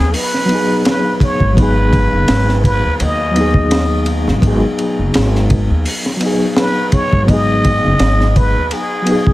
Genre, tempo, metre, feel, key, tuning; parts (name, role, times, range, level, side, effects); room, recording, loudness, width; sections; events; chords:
trip hop; 84 BPM; 4/4; swing 55% on 16ths; G# minor; A4 = 436 Hz
trumpet with plunger mute; melody; 0.0-9.3 s; G#4 to D#5; -18 LUFS; right 1 dB; dub echo
mellow reed electric piano; accompaniment; 0.0-9.3 s; F#3 to G#4; -17 LUFS; left 1 dB; fast tremolo, tape echo
upright bass; bass; 0.0-8.7 s; F#1 to D#2; -15 LUFS; equal
crunchy breakbeat drum kit; drums; 0.1-9.3 s; hi-hat, kick drum, ride cymbal, snare drum; -17 LUFS; equal
small room reverb; -11 LUFS; side -17 dB against mid
0.0-9.3 A section
0.0 G#m7